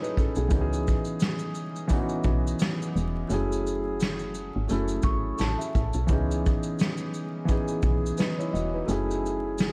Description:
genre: lo-fi hip hop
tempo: 86 BPM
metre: 4/4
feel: swing 57% on 16ths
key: C# minor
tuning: A4 = 440 Hz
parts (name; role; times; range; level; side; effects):
- felt-muted upright piano; accompaniment; 0.0-9.7 s; E3 to D#5; -31 LUFS; equal; cassette tape
- vintage brush drum kit; drums; 0.0-9.7 s; hi-hat, kick drum, shaker, snare drum; -30 LUFS; equal; none
- woody FM bass; bass; 0.4-9.7 s; E1 to C#2; -32 LUFS; equal; none
- large celesta; second line; 5.0-6.1 s; E5 to C#6; -38 LUFS; equal; lush chorus, diffuse ambient delay
room: moderate plate reverb, RT60 3.3 s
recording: dreamy mix soaked in reverb, vinyl crackle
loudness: -27 LUFS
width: mono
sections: 0.0-9.7 A section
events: none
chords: 0.0 F#m9; 0.5 C#m9; 3.3 F#m9; 6.1 C#m9; 8.9 F#m9

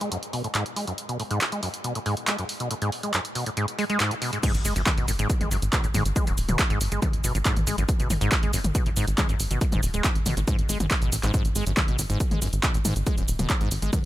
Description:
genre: driving peak-time techno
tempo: 139 BPM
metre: 4/4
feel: straight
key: unclear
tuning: A4 = 440 Hz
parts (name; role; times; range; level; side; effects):
- acid bass, saw; riff; 0.0-14.0 s; F#2 to G#3; -29 LUFS; equal; analog chorus, sidechain pumping, ping-pong delay
- punchy analog drum machine; drums; 0.0-14.0 s; crash cymbal, handclaps, hi-hat, shaker, toms; -28 LUFS; equal; none
- electronic kick drum; drums; 4.4-14.0 s; none; -26 LUFS; equal; overdrive
- tight sequencer bass; bass; 4.5-13.9 s; D#1 to A1; -27 LUFS; equal; sidechain pumping
room: little or no reverb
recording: none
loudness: -22 LUFS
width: side -15 dB against mid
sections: 0.0-4.4 A section; 4.4-14.1 B section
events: filter sweep on acid bass 0.0-4.4; drop 4.4-14.1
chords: 0.0 G#m; 4.4 G#5

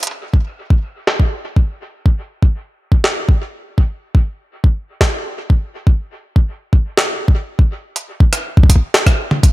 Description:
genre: IDM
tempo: 122 BPM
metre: 4/4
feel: straight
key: none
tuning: none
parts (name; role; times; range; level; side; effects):
- jungle sampler-style drum kit; drums; 0.0-9.5 s; hi-hat, rim click, snare drum, toms; -17 LUFS; equal; low-pass filter on snare, low-pass filter on hats, low-pass filter on toms, low-pass filter on room, dub echo
- electronic kick drum; drums; 0.3-9.5 s; none; -10 LUFS; equal; none
room: little or no reverb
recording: none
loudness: -14 LUFS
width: side -18 dB against mid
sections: 0.1-8.0 A section; 8.0-9.5 B section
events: none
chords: none

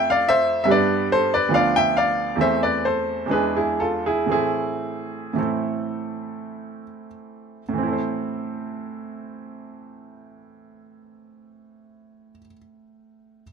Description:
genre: classical, baroque-style suite movement for grand piano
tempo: 49-74 BPM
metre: 3/4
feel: rubato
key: A minor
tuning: A4 = 441 Hz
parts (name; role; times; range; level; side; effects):
- bright baby grand piano; solo; 0.0-13.4 s; D2 to G5; -20 LUFS; right 1 dB; none
room: light reverb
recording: none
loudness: -20 LUFS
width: side -6 dB against mid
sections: 0.0-7.7 A section; 7.7-11.2 B section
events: slowing down 0.3-7.7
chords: 0.0 F; 0.7 G; 1.5 Bdim/D; 2.4 Am/E; 3.3 E7; 4.3 Am

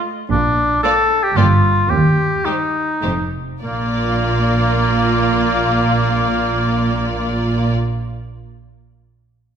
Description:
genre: quick classical-period movement for symphony orchestra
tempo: 98-115 BPM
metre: 3/4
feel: rubato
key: Bb major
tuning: A4 = 440 Hz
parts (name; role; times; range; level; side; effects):
- warm oboe; second line; 0.0-7.7 s; Bb3 to A4; -18 LUFS; equal; none
- warm studio cello section; bass; 0.3-7.7 s; Eb2 to Bb2; -21 LUFS; right 2 dB; none
- warm studio double bass section; bass; 0.3-7.7 s; F1 to Eb2; -21 LUFS; right 2 dB; none
- warm studio violin section; melody; 0.8-7.7 s; C5 to D5; -27 LUFS; left 3 dB; none
- warm studio violin section; second line; 0.8-7.7 s; F4 to G4; -26 LUFS; left 3 dB; none
- rich studio viola section; accompaniment; 0.8-7.7 s; G3 to Bb3; -28 LUFS; equal; none
room: wet scoring stage reverb, RT60 1.7 s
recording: minimal, uncompressed stereo recording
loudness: -14 LUFS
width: side -8 dB against mid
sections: 0.0-3.6 A section; 3.6-7.1 B section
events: slowing down 0.0-3.6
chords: 0.3 Bb; 1.4 Gm; 1.9 Cm/Eb (rootless); 3.0 F7(no3); 3.6 Bb

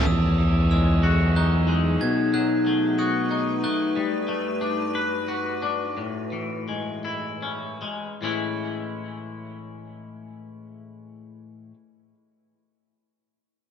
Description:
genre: rock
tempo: 49-62 BPM (dotted quarters)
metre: 6/8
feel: straight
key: A lydian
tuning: A4 = 440 Hz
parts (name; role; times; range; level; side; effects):
- icy glass pad; sustained chords; 0.0-5.9 s; G2 to B4; -27 LUFS; left 2 dB; chorus, built-in reverb
- glockenspiel with brass mallets; arpeggios; 0.0-4.0 s; D#6 to G#6; -33 LUFS; right 3 dB; tape echo
- twangy electric guitar; arpeggios; 0.1-11.7 s; A2 to B4; -28 LUFS; left 3 dB; wide subtle chorus, tape echo
- growling fingered electric bass; bass; 0.1-2.0 s; E2; -20 LUFS; equal; overdrive
room: light reverb, small room ambience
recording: none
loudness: -22 LUFS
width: side -8 dB against mid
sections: 0.1-8.2 A section; 8.2-13.1 B section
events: slowing down 4.0-8.2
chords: 0.1 Emaj9; 2.0 B7; 4.0 Gmaj9; 6.0 Amaj7

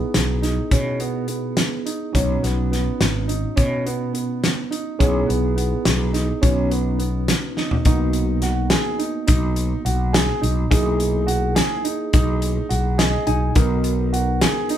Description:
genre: progressive instrumental, band music in an uneven meter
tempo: 210 BPM (eighths)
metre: 5/8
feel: straight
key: B major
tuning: A4 = 441 Hz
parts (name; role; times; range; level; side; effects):
- bright tine electric piano; accompaniment; 0.0-14.8 s; A#3 to G#5; -26 LUFS; equal; medium stereo tremolo
- dark baby grand piano; arpeggios; 0.0-14.8 s; B3 to G#4; -25 LUFS; right 4 dB; none
- fretless electric bass; bass; 0.1-14.4 s; G#1 to B2; -22 LUFS; equal; none
- loose indie drum kit; drums; 0.1-14.8 s; hi-hat, kick drum, snare drum, toms; -20 LUFS; left 1 dB; none
room: light reverb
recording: band playing live in one room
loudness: -18 LUFS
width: side -10 dB against mid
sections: 0.0-7.9 A section; 7.9-14.8 B section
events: drum fill 7.6; tine electric piano fill 12.7-13.6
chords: 0.0 C#m7/B (rootless); 2.1 Badd9; 5.0 C#m7/B; 6.4 Badd9; 7.9 G#m7/B; 10.7 F#13/B; 13.6 G#m7/B

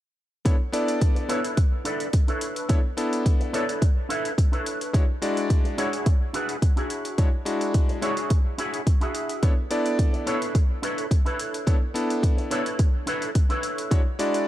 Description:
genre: nu-disco, nu disco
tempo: 107 BPM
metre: 4/4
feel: straight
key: B dorian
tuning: A4 = 440 Hz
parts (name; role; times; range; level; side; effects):
- bright electric grand piano; accompaniment; 0.4-14.5 s; G#3 to D5; -28 LUFS; left 1 dB; sidechain pumping, tape echo
- electronic hi-hat; drums; 0.5-14.4 s; none; -36 LUFS; left 1 dB; studio reverb
- electronic kick drum; drums; 0.5-14.0 s; none; -20 LUFS; equal; studio reverb
- electric guitar with an envelope filter; riff; 1.0-13.9 s; D4 to E5; -30 LUFS; right 1 dB; ensemble chorus, low-pass filter, tape echo
room: little or no reverb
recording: dark, warm production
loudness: -22 LUFS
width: side -13 dB against mid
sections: 0.5-14.5 A section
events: none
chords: 0.5 Bm11; 4.9 Dmaj9#11; 9.4 Bm11; 13.9 Dmaj9#11

